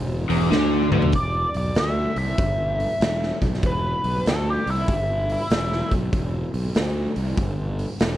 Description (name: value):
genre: blues rock power trio and southern rock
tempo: 96 BPM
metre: 4/4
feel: swing 66% on 8ths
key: E minor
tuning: A4 = 442 Hz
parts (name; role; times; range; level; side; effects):
- overdriven electric guitar; riff; 0.0-1.1 s; E2 to D3; -21 LUFS; equal; none
- fuzz fingered electric bass; bass; 0.0-8.2 s; E1 to D2; -25 LUFS; equal; overdrive
- raw garage drum kit; drums; 0.3-8.2 s; hi-hat, kick drum, snare drum, toms; -25 LUFS; equal; none
- biting lead guitar; melody; 1.2-5.9 s; E4 to E5; -26 LUFS; equal; wah, overdrive
room: light reverb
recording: none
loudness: -20 LUFS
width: side -13 dB against mid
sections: 0.0-1.1 A section; 1.1-8.2 B section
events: drum fill 0.5-1.1; lead electric guitar solo 1.1-8.2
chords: 0.0 N.C.; 1.1 Em